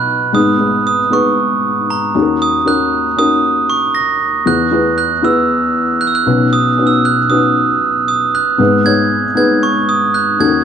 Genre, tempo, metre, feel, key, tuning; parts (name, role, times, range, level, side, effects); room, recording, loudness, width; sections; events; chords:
pop; 116 BPM; 4/4; straight; A4 = 440 Hz
glockenspiel with brass mallets; melody; 0.0-10.6 s; A#5 to A#6; -14 LUFS; right 5 dB
felt-muted upright piano; accompaniment; 0.0-10.6 s; G#1 to F#5; -14 LUFS; left 3 dB
moderate studio ambience, RT60 0.5 s; dark, warm production, nothing above 10.5 kHz; -11 LUFS; side -8 dB against mid
0.3-10.6 A section
0.3 G#m; 2.1 D#m7; 4.5 E; 6.3 Badd9; 8.6 G#m